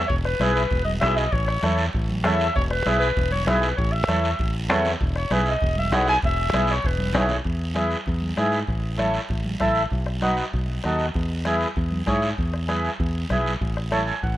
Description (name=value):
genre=latin, cumbia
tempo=196 BPM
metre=4/4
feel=straight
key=E major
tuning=A4 = 445 Hz
part: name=clear clarinet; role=melody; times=0.0-7.3 s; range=B4 to G#5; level=-25 LUFS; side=left 1 dB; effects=none
part: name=fingered electric bass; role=bass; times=0.0-14.4 s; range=E1 to G#2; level=-25 LUFS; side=equal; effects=none
part: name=bombo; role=percussion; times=0.1-14.4 s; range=none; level=-28 LUFS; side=equal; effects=none
part: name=guiro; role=percussion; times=0.1-14.4 s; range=none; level=-33 LUFS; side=right 3 dB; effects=none
part: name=mellow accordion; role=accompaniment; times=0.4-14.4 s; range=D#4 to G#5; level=-26 LUFS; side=equal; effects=none
part: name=congas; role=percussion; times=0.4-14.1 s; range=none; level=-31 LUFS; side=right 1 dB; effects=none
room=small room ambience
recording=rough home demo mix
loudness=-20 LUFS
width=side -14 dB against mid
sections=0.0-7.5 A section; 7.5-14.4 B section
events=accordion fill 13.9-14.4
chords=0.1 E; 1.3 A; 2.5 E; 3.8 A; 5.0 E; 8.7 A; 9.9 B7; 11.1 E; 13.6 A